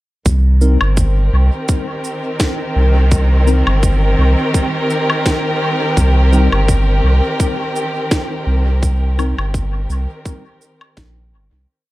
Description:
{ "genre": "ambient dub", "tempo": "84 BPM", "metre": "4/4", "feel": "swing 55% on 16ths", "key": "C minor", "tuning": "A4 = 440 Hz", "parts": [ { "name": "dark chamber string section", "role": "sustained chords", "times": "0.3-11.7 s", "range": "Eb3 to Bb4", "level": "-19 LUFS", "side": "equal", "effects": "none" }, { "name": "warm sub bass", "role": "bass", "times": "0.3-11.7 s", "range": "G1 to C2", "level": "-12 LUFS", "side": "equal", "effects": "tube saturation" }, { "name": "electronic cabasa, woodblock and snare drum", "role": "drums", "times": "0.3-11.1 s", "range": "none", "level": "-23 LUFS", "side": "equal", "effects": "overdrive, dub echo" }, { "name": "electronic kick drum", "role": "drums", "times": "0.3-11.1 s", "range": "none", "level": "-18 LUFS", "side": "equal", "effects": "overdrive" }, { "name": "mellow tine electric piano", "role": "stabs", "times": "0.6-9.3 s", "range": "G3 to Bb4", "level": "-23 LUFS", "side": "left 3 dB", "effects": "medium stereo tremolo, dub echo" } ], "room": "digital ambience", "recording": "echo-heavy mix", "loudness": "-13 LUFS", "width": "side -18 dB against mid", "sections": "0.3-11.7 groove", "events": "fade-out 7.9-11.7", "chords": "0.3 Cm7", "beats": "| 0.26 0.97 1.69 2.40 | 3.11 3.83 4.54 5.26 | 5.97 6.69 7.40 8.11 | 8.83 9.54 10.26 10.97" }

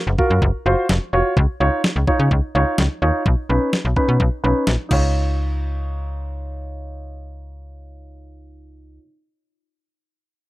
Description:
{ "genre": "synth-pop", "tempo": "127 BPM", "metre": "4/4", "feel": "straight", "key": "Db major", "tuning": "A4 = 440 Hz", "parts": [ { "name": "slap-like FM bass", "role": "bass", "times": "0.1-9.0 s", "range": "F1 to Db3", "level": "-20 LUFS", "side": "equal", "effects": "none" }, { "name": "warm grand piano", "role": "accompaniment", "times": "0.2-9.0 s", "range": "Db4 to Db5", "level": "-21 LUFS", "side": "right 1 dB", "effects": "low-pass filter, plate reverb" }, { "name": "clean 12-bit digital drum machine", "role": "drums", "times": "0.2-5.0 s", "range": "crash cymbal, kick drum, snare drum", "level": "-21 LUFS", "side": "equal", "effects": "none" } ], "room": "moderate small room reverb, RT60 0.5 s", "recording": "rough home demo mix", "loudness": "-16 LUFS", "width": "side -18 dB against mid", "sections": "0.0-5.1 A section; 5.1-8.9 B section", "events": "filter sweep on grand piano 0.0-5.1", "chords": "0.0 Gbmaj7; 1.4 Dbadd9; 3.3 Cbadd9; 4.9 Dbadd9", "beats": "0.42 0.90 | 1.37 1.84 2.31 2.78 | 3.26 3.73 4.20 4.67 | 5.15 5.62 6.09 6.56 | 7.04 7.51 7.98 8.45" }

